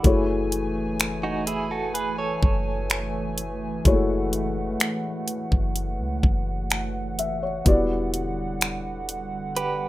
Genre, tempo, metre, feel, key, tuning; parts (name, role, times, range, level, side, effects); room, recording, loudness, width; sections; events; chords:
contemporary R&B; 63 BPM; 4/4; straight; A4 = 440 Hz
felt-muted upright piano; accompaniment; 0.0-9.9 s; G#3 to F#5; -28 LUFS; left 3 dB; plate reverb
hollow soft pad; sustained chords; 0.0-9.9 s; D3 to G#5; -31 LUFS; right 2 dB; chorus, plate reverb
direct-recorded clean electric guitar; arpeggios; 0.0-3.6, 9.6-9.9 s; D#4 to C#5; -28 LUFS; right 4 dB; tremolo, plate reverb
soft 808-style bass; bass; 0.0-9.9 s; E1 to C#2; -29 LUFS; equal
trap drum kit; drums; 0.0-9.8 s; finger snaps, hi-hat, kick drum; -21 LUFS; equal
light reverb; rough home demo mix; -22 LUFS; side -16 dB against mid
0.0-9.9 A section
0.0 F#m9; 7.7 Em9